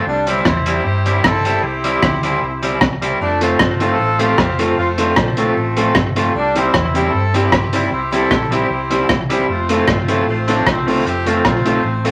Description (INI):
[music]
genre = ska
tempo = 153 BPM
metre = 4/4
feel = straight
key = F major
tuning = A4 = 440 Hz
[part]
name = electric guitar at the edge of break-up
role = accompaniment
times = 0.0-12.1 s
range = G3 to F4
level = -22 LUFS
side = equal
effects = slapback echo
[part]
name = clear horn section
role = melody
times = 0.1-12.1 s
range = F3 to A4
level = -22 LUFS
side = equal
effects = none
[part]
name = hollow-body short-scale fingered electric bass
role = bass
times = 0.1-12.1 s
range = F1 to G2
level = -25 LUFS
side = equal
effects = none
[part]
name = crunchy breakbeat drum kit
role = drums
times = 0.3-12.1 s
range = hi-hat, kick drum, rim click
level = -20 LUFS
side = equal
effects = slapback echo
[part]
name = dark upright piano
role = stabs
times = 3.4-12.1 s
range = C4 to A4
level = -23 LUFS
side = equal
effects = none
[sound]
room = wet studio reverb, RT60 0.5 s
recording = vinyl crackle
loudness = -16 LUFS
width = mono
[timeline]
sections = 0.0-12.1 A section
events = none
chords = 0.1 C; 3.2 F; 6.3 C; 9.5 F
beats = | 0.06 0.46 0.85 1.24 | 1.63 2.03 2.42 2.81 | 3.21 3.60 3.99 4.38 | 4.78 5.17 5.56 5.96 | 6.35 6.74 7.13 7.53 | 7.92 8.31 8.71 9.10 | 9.49 9.88 10.27 10.67 | 11.06 11.45 11.84